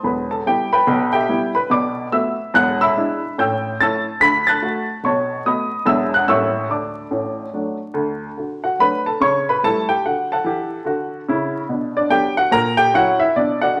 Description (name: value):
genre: jazz, stride piano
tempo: 144 BPM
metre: 4/4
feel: swing 62% on 8ths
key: D major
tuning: A4 = 440 Hz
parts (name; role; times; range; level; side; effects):
- warm upright piano; solo; 0.0-13.8 s; E1 to B6; -19 LUFS; equal; none
room: wet large studio reverb, RT60 1.2 s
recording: vinyl crackle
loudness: -19 LUFS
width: mono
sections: 0.0-8.4 A section; 8.4-13.8 B section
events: none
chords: 0.0 Em; 1.7 Bm7; 2.5 E7; 3.4 A7; 4.2 D; 5.0 B7; 5.9 E7; 6.3 A7b9; 6.7 D; 9.2 A7/C#; 10.0 D; 11.7 Bm; 12.5 F#7/A#